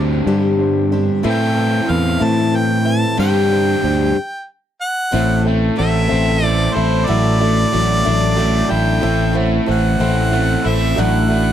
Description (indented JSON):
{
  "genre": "rock",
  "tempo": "62 BPM (dotted quarters)",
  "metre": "6/8",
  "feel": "straight",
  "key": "A dorian from 5.1 s",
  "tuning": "A4 = 443 Hz",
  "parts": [
    { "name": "bright reed electric piano", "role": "accompaniment", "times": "0.0-11.5 s", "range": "F#3 to G5", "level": "-26 LUFS", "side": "right 11 dB", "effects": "none" },
    { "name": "picked twelve-string acoustic guitar", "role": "accompaniment", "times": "0.0-11.5 s", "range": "G2 to A4", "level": "-21 LUFS", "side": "left 7 dB", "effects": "none" },
    { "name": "crunchy overdriven guitar", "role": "riff", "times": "0.0-11.5 s", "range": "G2 to A4", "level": "-20 LUFS", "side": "right 2 dB", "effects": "none" },
    { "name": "fingered electric bass", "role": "bass", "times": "0.0-11.5 s", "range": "A1 to A2", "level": "-18 LUFS", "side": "equal", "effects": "none" },
    { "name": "bright harmonica", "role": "melody", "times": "1.3-11.5 s", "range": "C5 to A5", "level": "-20 LUFS", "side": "equal", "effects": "none" }
  ],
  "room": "little or no reverb",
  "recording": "dry, close 1970s-style studio recording",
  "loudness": "-14 LUFS",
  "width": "side -10 dB against mid",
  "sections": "0.0-5.1 A section; 5.1-11.5 B section",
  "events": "stop 4.2-5.1",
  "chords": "0.0 Gsus4; 1.2 Amadd9; 3.2 Gsus4; 5.1 Am; 7.1 Dadd9/A; 9.0 Am; 11.0 Dadd9/A"
}